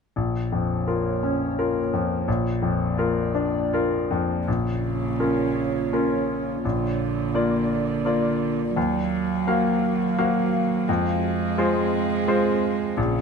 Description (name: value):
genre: neoclassical piano and strings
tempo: 85 BPM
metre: 3/4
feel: rubato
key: Bb minor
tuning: A4 = 439 Hz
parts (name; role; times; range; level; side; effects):
- clear grand piano; accompaniment; 0.2-13.2 s; Bb1 to F5; -23 LUFS; left 3 dB; none
- dark analog pad; sustained chords; 0.7-13.2 s; Bb3 to F5; -29 LUFS; right 2 dB; chorus, phaser
- warm cello; second line; 4.5-13.2 s; Db3 to Ab3; -26 LUFS; right 11 dB; none
room: light reverb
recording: none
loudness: -21 LUFS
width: side -6 dB against mid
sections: 0.2-4.5 A section; 4.5-13.2 B section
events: none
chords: 0.2 Bbm; 2.3 Bb; 4.5 Bbm; 6.6 Bb; 8.8 Ebmadd9; 10.9 Fm